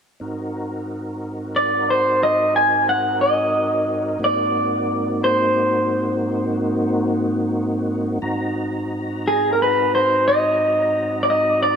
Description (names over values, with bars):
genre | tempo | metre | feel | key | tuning
blues | 60 BPM (dotted quarters) | 12/8 | straight | Ab mixolydian | A4 = 439 Hz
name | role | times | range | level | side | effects
tonewheel organ | sustained chords | 0.2-11.8 s | Ab2 to Bb5 | -23 LUFS | equal | slow rotary speaker, overdrive, chorus vibrato
electric guitar through a small old amp | melody | 1.6-11.8 s | Ab4 to Ab5 | -17 LUFS | equal | spring reverb, dub echo
room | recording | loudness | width
moderate plate reverb, RT60 3.2 s | echo-heavy mix | -17 LUFS | side -6 dB against mid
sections
0.2-8.2 A section; 8.2-11.8 B section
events
none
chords
0.2 Ab9